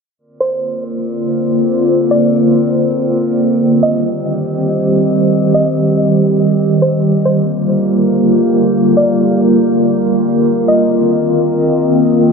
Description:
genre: hip hop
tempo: free time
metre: none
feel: none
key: Bb major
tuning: A4 = 439 Hz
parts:
  - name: warbly tape-like pad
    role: sustained chords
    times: 0.7-12.3 s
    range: D3 to C5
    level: -12 LUFS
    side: equal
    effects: chorus, built-in reverb, tremolo
  - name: drifting glass-harmonics texture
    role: texture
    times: 0.7-12.3 s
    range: Bb3 to F5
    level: -21 LUFS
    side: left 2 dB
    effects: chorus, built-in reverb
  - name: soft round pluck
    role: melody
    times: 0.4-12.1 s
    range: C5 to Eb5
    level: -20 LUFS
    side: equal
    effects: chorus, tape echo
room: moderate huge ambient reverb, RT60 5.0 s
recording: low-pass filter, lossy compression artefacts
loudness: -11 LUFS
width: side -5 dB against mid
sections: 0.2-12.3 A section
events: none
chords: 0.2 Bbadd9; 3.6 Cm; 7.0 Gm7; 10.5 F7sus4

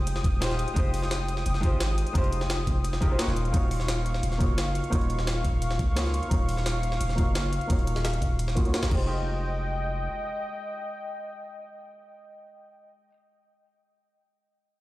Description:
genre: liquid drum and bass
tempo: 173 BPM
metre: 4/4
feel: straight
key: F minor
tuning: A4 = 440 Hz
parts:
  - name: archtop guitar, miked and amplified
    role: accompaniment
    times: 0.0-13.2 s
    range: Ab3 to Eb5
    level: -33 LUFS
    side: equal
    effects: low-pass filter, tape echo
  - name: warm analog pad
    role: sustained chords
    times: 0.0-12.6 s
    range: Eb5 to Eb6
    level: -35 LUFS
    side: left 1 dB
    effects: chorus
  - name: long sustained 808-style bass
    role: bass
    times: 0.0-10.1 s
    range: Eb1 to Db2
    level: -28 LUFS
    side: equal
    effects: none
  - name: jungle sampler-style drum kit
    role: drums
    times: 0.1-8.9 s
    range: hi-hat, snare drum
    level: -34 LUFS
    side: equal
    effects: high-pass filter on hats, studio reverb, high-pass filter on snare, high-pass filter on room
  - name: pop drum kit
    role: drums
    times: 0.1-9.0 s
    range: crash cymbal, hi-hat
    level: -43 LUFS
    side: right 1 dB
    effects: studio reverb
  - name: electronic kick drum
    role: drums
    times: 0.2-9.0 s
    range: none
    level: -25 LUFS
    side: equal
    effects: studio reverb
room: digital ambience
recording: played on a big sound system in a bare room, stone room reverb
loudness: -24 LUFS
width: side -17 dB against mid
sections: 0.0-9.1 A section; 9.1-11.9 B section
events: filter sweep on hollow-body jazz guitar 0.0-9.1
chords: 0.0 Fm9; 3.4 Ebm9; 8.9 Fm9

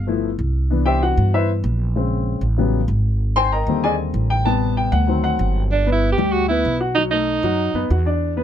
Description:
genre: jazz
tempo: 192 BPM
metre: 4/4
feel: straight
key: G major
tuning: A4 = 440 Hz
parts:
  - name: warm baby grand piano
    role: accompaniment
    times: 0.0-8.4 s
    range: C3 to C6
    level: -21 LUFS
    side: left 4 dB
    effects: none
  - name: upright bass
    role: bass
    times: 0.0-8.4 s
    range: G1 to G2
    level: -20 LUFS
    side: right 1 dB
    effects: none
  - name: clear alto saxophone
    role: melody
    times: 5.7-8.0 s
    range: D4 to G4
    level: -20 LUFS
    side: right 5 dB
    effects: none
room: little or no reverb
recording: close, detailed microphones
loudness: -17 LUFS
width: side -10 dB against mid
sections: 0.0-5.7 A section; 5.7-8.4 B section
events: grand piano solo 0.0-5.7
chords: 0.1 G13; 0.7 Cmaj7; 2.0 Bbm7; 2.6 A13; 3.2 Abmaj9#11; 4.5 Am7; 5.1 D7b9; 5.7 G6; 7.0 B7

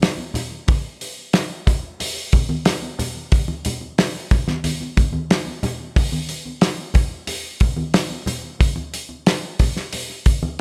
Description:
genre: rock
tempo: 91 BPM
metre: 4/4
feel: straight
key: none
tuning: none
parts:
  - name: cloth-damped thuddy drum kit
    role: drums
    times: 0.0-10.4 s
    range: hi-hat, kick drum, snare drum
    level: -21 LUFS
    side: equal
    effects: analog delay
  - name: congas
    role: percussion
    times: 0.3-10.6 s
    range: none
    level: -30 LUFS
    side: equal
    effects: analog delay
room: little or no reverb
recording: echo-heavy mix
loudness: -21 LUFS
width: mono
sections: 0.0-10.6 A section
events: none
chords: none

